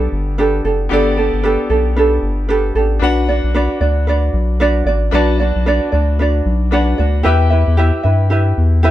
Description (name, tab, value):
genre	acoustic pop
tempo	114 BPM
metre	4/4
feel	swing 60% on 16ths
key	B minor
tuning	A4 = 437 Hz
part	bright concert grand piano	accompaniment	0.0-8.9 s	B3 to A5	-23 LUFS	left 5 dB	none
part	ukulele	accompaniment	0.0-8.9 s	D4 to E5	-17 LUFS	right 3 dB	none
part	round analog bass	bass	0.0-8.9 s	F#1 to G2	-15 LUFS	left 1 dB	none
room	moderate studio reverb, RT60 0.6 s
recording	heard from further back in the room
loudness	-13 LUFS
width	side -13 dB against mid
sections	0.0-8.9 A section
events	none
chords	0.0 Gadd9; 3.0 Bm; 7.2 Em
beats	0.39 | 0.91 1.44 1.97 2.50 | 3.02 3.55 4.08 4.61 | 5.14 5.66 6.19 6.72 | 7.25 7.78 8.30 8.83